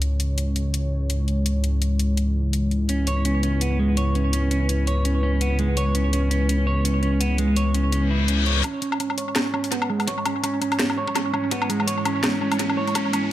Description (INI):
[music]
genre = half-time drum and bass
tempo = 167 BPM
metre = 4/4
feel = swing 56% on 16ths, half-time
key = C# minor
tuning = A4 = 439 Hz
[part]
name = dark analog pad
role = sustained chords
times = 0.0-13.3 s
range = G#3 to C#5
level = -27 LUFS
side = left 1 dB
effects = chorus, sidechain pumping
[part]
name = dark detuned saw bass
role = bass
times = 0.0-8.6 s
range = C#2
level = -22 LUFS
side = equal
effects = none
[part]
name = drum and bass drum kit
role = drums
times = 0.0-13.2 s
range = hi-hat, snare drum, woodblock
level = -26 LUFS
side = left 2 dB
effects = overdrive, studio reverb, tape echo
[part]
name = clean electric guitar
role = arpeggios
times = 2.9-13.3 s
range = G#3 to C#5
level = -25 LUFS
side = right 3 dB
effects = low-pass filter, tape echo
[part]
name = reverse cymbal and riser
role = sound effects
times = 8.0-13.3 s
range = none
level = -30 LUFS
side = left 5 dB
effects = none
[part]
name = electronic kick drum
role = drums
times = 8.6-13.0 s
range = none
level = -34 LUFS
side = equal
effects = high-pass filter on kick, studio reverb
[sound]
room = light reverb, digital ambience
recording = echo-heavy mix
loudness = -20 LUFS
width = side -13 dB against mid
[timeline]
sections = 0.0-8.6 A section; 8.6-13.3 B section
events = filter sweep on analog synth pad 0.0-8.6, 8.6-13.3; reverse cymbal 8.0-8.6; build-up 8.6-13.3; riser 8.6-13.3; filter sweep on clean electric guitar 8.6-13.3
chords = 0.0 C#m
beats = | 0.02 0.38 0.74 1.10 | 1.46 1.81 2.17 2.53 | 2.89 3.25 3.61 3.97 | 4.33 4.69 5.05 5.41 | 5.77 6.13 6.49 6.84 | 7.21 7.56 7.92 8.28 | 8.64 9.00 9.36 9.72 | 10.08 10.44 10.80 11.16 | 11.52 11.88 12.23 12.59 | 12.95 13.31